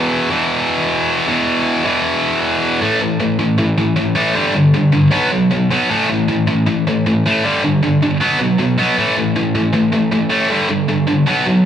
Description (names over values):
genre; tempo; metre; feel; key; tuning
punk; 156 BPM; 4/4; straight; unclear; A4 = 440 Hz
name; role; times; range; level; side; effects
tight distorted guitar; solo; 0.0-11.6 s; E2 to B3; -13 LUFS; equal; distortion
room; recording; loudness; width
wet large studio reverb, RT60 1.4 s; band playing live in one room; -13 LUFS; side -9 dB against mid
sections
0.0-2.8 A section; 2.8-11.7 B section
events
half time 0.0-2.8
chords
0.0 E5; 2.8 A5; 4.4 G5; 5.1 B5; 5.9 A5; 7.4 G5; 8.2 B5; 9.0 A5; 10.5 G5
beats
0.12 0.51 0.89 | 1.27 1.66 2.04 2.43 | 2.81 3.20 3.58 3.97 | 4.36 4.74 5.12 5.51 | 5.89 6.28 6.67 7.05 | 7.43 7.82 8.20 8.59 | 8.97 9.36 9.74 10.13 | 10.51 10.90 11.28